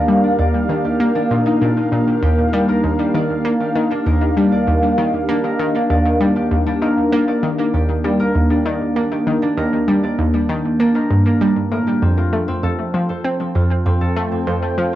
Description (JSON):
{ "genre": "ambient, sequencer-driven space music", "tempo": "98 BPM", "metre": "4/4", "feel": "straight", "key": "Eb lydian", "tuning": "A4 = 442 Hz", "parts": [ { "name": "sweeping resonant pad", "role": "sustained chords", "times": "0.0-15.0 s", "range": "Eb3 to G5", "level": "-20 LUFS", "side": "right 1 dB", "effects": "wide subtle chorus, cassette tape" }, { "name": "concert harp", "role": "arpeggios", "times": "0.0-15.0 s", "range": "C4 to D5", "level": "-22 LUFS", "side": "left 1 dB", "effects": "auto-pan, cassette tape, tape echo" }, { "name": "analog pluck", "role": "riff", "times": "0.1-14.9 s", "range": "Eb2 to C4", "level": "-18 LUFS", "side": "equal", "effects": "chorus, cassette tape, tape echo" } ], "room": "wet studio reverb, RT60 0.6 s", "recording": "home recording on cassette", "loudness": "-15 LUFS", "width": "side -13 dB against mid", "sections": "0.0-15.0 A section", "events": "none", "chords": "0.0 Ebmaj7; 12.0 F" }